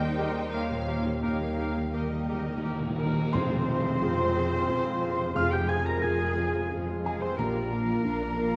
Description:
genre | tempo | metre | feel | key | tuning
cinematic, emotional film score for orchestra | 88 BPM | 3/4 | uneven beats, rubato | F dorian from 3.3 s | A4 = 438 Hz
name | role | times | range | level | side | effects
muted symphonic violin section | melody | 0.0-8.6 s | C5 to G5 | -46 LUFS | equal | none
mellow hollow silver concert flute | second line | 0.0-8.6 s | Bb4 to Bb6 | -38 LUFS | equal | none
muted symphonic violin section | second line | 0.0-8.6 s | G4 to Bb5 | -40 LUFS | equal | none
felt-muted upright piano | accompaniment | 0.0-8.6 s | F1 to Bb6 | -36 LUFS | equal | none
muted symphonic viola section | accompaniment | 0.0-8.5 s | F3 to Ab4 | -41 LUFS | equal | none
dark French horn section | sustained chords | 0.0-8.6 s | G3 to Bb4 | -39 LUFS | equal | none
concert harp | arpeggios | 0.0-8.6 s | F2 to Bb4 | -41 LUFS | equal | none
muted symphonic cello section | bass | 0.0-8.6 s | Eb2 to Bb4 | -36 LUFS | equal | none
muted symphonic double bass section | bass | 0.0-8.6 s | Bb1 to F2 | -38 LUFS | equal | none
timpani | percussion | 0.0-4.3 s | F2 to Eb3 | -36 LUFS | equal | none
bright clarinet | second line | 0.2-8.6 s | G4 to Bb5 | -41 LUFS | equal | none
clear oboe | second line | 0.2-3.1 s | Bb4 | -45 LUFS | equal | none
tam-tam | percussion | 3.3-6.0 s | none | -43 LUFS | equal | none
room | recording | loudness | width
wet concert hall reverb, RT60 2.2 s | dark, warm production | -28 LUFS | mono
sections
0.0-3.3 A section; 3.3-8.6 B section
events
timpani fill 1.2-3.3; band accent 3.3-4.0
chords
0.0 Cm7/Eb; 3.3 Fm; 7.4 Bb

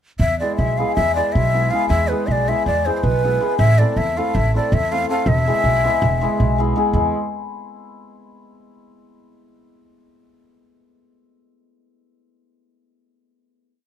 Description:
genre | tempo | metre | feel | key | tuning
balkan folk, Balkan wedding band | 322 BPM (eighths) | 9/8 | straight | E phrygian dominant | A4 = 440 Hz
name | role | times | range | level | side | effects
breathy ney | melody | 0.2-6.6 s | B4 to F5 | -20 LUFS | equal | none
upright bass | bass | 0.2-7.1 s | E1 to E2 | -19 LUFS | right 1 dB | none
hammered dulcimer | accompaniment | 0.4-7.1 s | G#3 to A4 | -22 LUFS | left 2 dB | none
room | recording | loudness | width
light reverb | none | -16 LUFS | side -9 dB against mid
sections
0.2-6.9 A section; 6.9-8.6 final chord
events
none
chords
0.2 E; 3.6 Am; 5.3 E

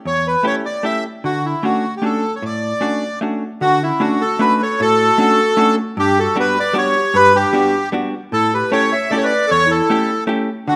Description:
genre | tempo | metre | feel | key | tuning
musette waltz | 153 BPM | 3/4 | straight | D major | A4 = 442 Hz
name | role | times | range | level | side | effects
bandoneon | melody | 0.1-10.8 s | E4 to E5 | -18 LUFS | equal | none
hollow-body jazz guitar | accompaniment | 0.1-10.8 s | E2 to G4 | -23 LUFS | equal | none
warm clarinet | second line | 3.6-10.8 s | C#4 to C#5 | -25 LUFS | equal | none
room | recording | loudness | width
moderate recital hall reverb, RT60 1.4 s | none | -17 LUFS | mono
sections
0.0-3.6 A section; 3.6-10.8 A section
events
none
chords
0.0 A7; 1.2 Dmaj7; 6.0 Gmaj7; 8.3 A7

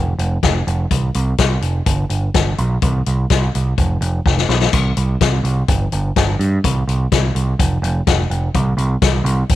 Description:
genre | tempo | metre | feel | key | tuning
classic rock | 126 BPM | 4/4 | straight | G mixolydian | A4 = 436 Hz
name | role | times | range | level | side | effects
growling picked electric bass | bass | 0.0-9.6 s | F1 to G2 | -17 LUFS | right 1 dB | overdrive
vintage drum kit | drums | 0.2-9.6 s | hi-hat, kick drum, snare drum, splash cymbal | -18 LUFS | left 3 dB | none
room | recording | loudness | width
little or no reverb | 1960s-style stereo | -15 LUFS | side -14 dB against mid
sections
0.0-9.6 A section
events
drum fill 4.3-4.7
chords
none

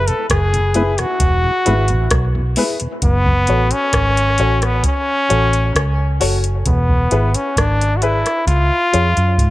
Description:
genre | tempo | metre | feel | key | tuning
dub reggae | 66 BPM | 4/4 | straight | F# minor | A4 = 440 Hz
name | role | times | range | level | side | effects
brilliant trombone | melody | 0.0-9.5 s | B3 to A4 | -18 LUFS | left 1 dB | dub echo
vintage muted fingered electric bass | bass | 0.0-9.5 s | E1 to G#2 | -17 LUFS | equal | none
mellow tonewheel organ | accompaniment | 0.1-3.3 s | E2 to E4 | -25 LUFS | left 1 dB | slow rotary speaker, dub echo
soft vintage rhythm box | drums | 0.1-9.5 s | hi-hat, kick drum, rim click | -19 LUFS | equal | none
warm upright piano | stabs | 0.7-9.1 s | E4 to C#5 | -24 LUFS | left 3 dB | dub echo
room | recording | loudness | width
light reverb | none | -13 LUFS | side -16 dB against mid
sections
0.0-9.5 A section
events
drum fill 8.5-9.5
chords
0.0 E; 3.0 F#m; 6.7 E; 8.5 C#

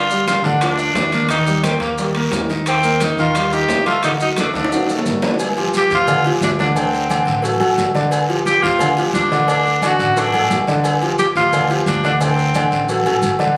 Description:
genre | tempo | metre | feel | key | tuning
latin, salsa | 176 BPM | 4/4 | straight | G minor | A4 = 441 Hz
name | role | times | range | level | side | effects
raspy tenor saxophone | melody | 0.0-12.9 s | Bb3 to G4 | -20 LUFS | equal | none
warm baby grand piano | accompaniment | 0.0-13.6 s | D3 to Eb5 | -21 LUFS | equal | none
upright bass | bass | 0.0-13.6 s | G1 to Eb2 | -28 LUFS | equal | none
congas | percussion | 0.1-13.6 s | none | -30 LUFS | equal | none
maracas | percussion | 0.1-13.6 s | none | -35 LUFS | equal | none
bongos and cowbell | percussion | 0.3-13.6 s | none | -30 LUFS | equal | none
guiro | percussion | 0.3-13.6 s | none | -32 LUFS | equal | none
timbales and agogo bells | percussion | 0.3-13.4 s | none | -27 LUFS | equal | none
room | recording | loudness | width
light reverb | recorded on a phone in the room, studio ambience | -17 LUFS | mono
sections
0.0-5.4 A section; 5.4-13.6 B section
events
drum fill 4.5-5.4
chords
0.0 Gm7; 1.3 Eb; 2.7 Cm7/Eb; 4.0 D; 5.4 G5; 6.8 D7; 8.1 G5; 9.5 D; 10.8 G5; 12.2 D7

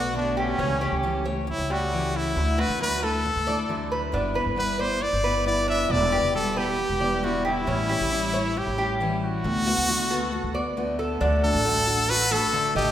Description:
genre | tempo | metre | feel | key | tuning
latin, Cuban son and guajira | 136 BPM | 4/4 | straight | unclear | A4 = 439 Hz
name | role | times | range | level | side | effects
brilliant trumpet | melody | 0.0-12.9 s | C#4 to E5 | -25 LUFS | equal | none
picked steel-string acoustic guitar | accompaniment | 0.0-12.9 s | B2 to G4 | -30 LUFS | left 2 dB | none
Cuban tres | arpeggios | 0.0-12.9 s | G3 to Eb5 | -29 LUFS | right 1 dB | none
upright bass | bass | 0.0-12.9 s | E1 to D2 | -29 LUFS | equal | none
room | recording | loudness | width
wet scoring stage reverb, RT60 1.7 s | recorded in a church or concert hall | -22 LUFS | side -11 dB against mid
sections
0.0-11.2 A section; 11.2-12.9 B section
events
none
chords
0.0 Bm7; 0.6 A7/C#; 2.4 Dadd9; 4.1 G6; 5.9 Em7; 7.7 A7; 9.4 D6; 11.2 D

